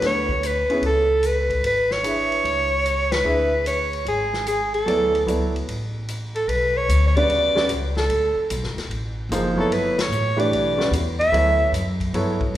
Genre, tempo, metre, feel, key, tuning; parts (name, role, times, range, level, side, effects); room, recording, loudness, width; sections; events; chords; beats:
modal jazz; 149 BPM; 4/4; swing 67% on 8ths; G lydian from 6.5 s; A4 = 439 Hz
breathy soprano saxophone; melody; 0.0-11.7 s; G#4 to E5; -20 LUFS; equal
warm baby grand piano; accompaniment; 0.0-12.4 s; C#3 to E5; -25 LUFS; right 1 dB
upright bass; bass; 0.0-12.6 s; E1 to G2; -25 LUFS; left 1 dB
vintage drum kit; drums; 0.0-12.5 s; hi-hat, kick drum, ride cymbal, snare drum; -32 LUFS; left 2 dB
wet recital hall reverb, RT60 1.5 s; recorded in a church or concert hall; -19 LUFS; side -13 dB against mid
0.0-6.5 A section; 6.5-12.6 B section
band accent 3.0, 9.9
0.0 C#m7; 4.9 D69; 6.5 G69
| 0.02 0.42 0.83 1.23 | 1.63 2.04 2.44 2.85 | 3.25 3.65 4.06 4.46 | 4.87 5.27 5.67 6.08 | 6.48 6.89 7.29 7.70 | 8.10 8.50 8.91 9.31 | 9.71 10.12 10.52 10.93 | 11.33 11.73 12.13 12.54